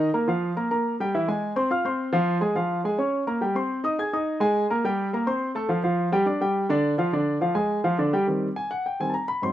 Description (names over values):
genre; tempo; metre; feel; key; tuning
jazz; 210 BPM; 4/4; straight; unclear; A4 = 441 Hz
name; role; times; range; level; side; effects
warm concert grand piano; solo; 0.0-9.5 s; Ab2 to Ab6; -22 LUFS; equal; none
room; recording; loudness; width
little or no reverb; recorded outdoors, with no room sound; -22 LUFS; side -12 dB against mid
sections
0.0-8.3 A section; 8.3-9.5 B section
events
grand piano solo 8.3-9.5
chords
0.3 Fsus4; 0.9 Edim; 1.4 Fm; 2.6 Db/F; 3.1 Bbm69; 3.7 Ab; 4.8 C5; 5.4 F; 6.0 Dmadd11; 7.1 Ddim; 7.7 Fm69; 8.3 Eb6